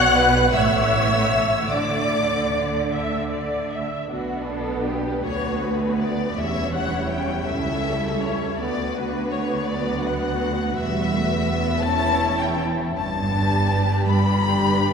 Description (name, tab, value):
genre	classical, slow romantic movement for string orchestra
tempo	49-56 BPM (dotted quarters)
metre	6/8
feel	rubato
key	D major, B minor from 4.1 s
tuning	A4 = 442 Hz
part	rich studio violin section	melody	0.0-14.9 s	B4 to F#6	-25 LUFS	left 5 dB	none
part	dark studio violin section	second line	0.0-14.9 s	E4 to F#5	-26 LUFS	left 1 dB	none
part	warm studio viola section	accompaniment	0.0-14.9 s	F#3 to E5	-26 LUFS	right 2 dB	none
part	dark studio double bass section	bass	0.0-14.9 s	E1 to D2	-29 LUFS	right 2 dB	none
part	warm studio cello section	bass	0.0-14.9 s	C#2 to D3	-26 LUFS	right 2 dB	none
room	wet cathedral reverb, RT60 4.1 s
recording	recorded in a church or concert hall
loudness	-20 LUFS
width	side -6 dB against mid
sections	0.0-4.1 A section; 4.1-14.9 B section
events	none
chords	0.0 B5; 0.5 A; 1.7 Dsus2; 4.1 Bm; 6.4 C#dim/E; 8.6 Bm/D; 10.8 C#m7b5/E; 13.0 G